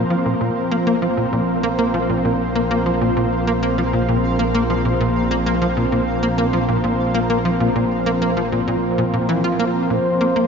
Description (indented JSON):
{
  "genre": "ambient",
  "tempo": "98 BPM",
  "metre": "4/4",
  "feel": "straight",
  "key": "unclear",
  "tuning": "A4 = 440 Hz",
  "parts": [
    { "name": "lush unison pad", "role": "sustained chords", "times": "0.0-10.5 s", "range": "F3 to C5", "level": "-20 LUFS", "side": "equal", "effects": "chorus" },
    { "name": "tight sequencer bass", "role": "riff", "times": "0.0-10.4 s", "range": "Bb2 to F4", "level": "-21 LUFS", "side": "equal", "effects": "analog chorus, analog delay" },
    { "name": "analog drone", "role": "bass", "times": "1.1-10.5 s", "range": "Bb1", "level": "-26 LUFS", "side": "equal", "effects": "chorus" },
    { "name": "pulsing gated texture", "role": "texture", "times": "0.0-10.5 s", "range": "F4 to F5", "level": "-30 LUFS", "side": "right 3 dB", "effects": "chorus, built-in reverb" },
    { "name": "breathy flute-like synth lead", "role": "melody", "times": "9.9-10.5 s", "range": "C5", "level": "-20 LUFS", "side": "left 1 dB", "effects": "chorus" }
  ],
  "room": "wet cathedral reverb, RT60 6.4 s",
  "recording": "in a vast, echoing space, cassette tape, nothing above 7.6 kHz",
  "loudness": "-16 LUFS",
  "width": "side -6 dB against mid",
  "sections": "0.0-10.5 A section",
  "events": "none",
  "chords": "0.0 Bbsus2",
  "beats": "| 0.10 0.72 1.33 1.94 | 2.55 3.17 3.78 4.39 | 5.00 5.62 6.23 6.84 | 7.45 8.06 8.68 9.29 | 9.90"
}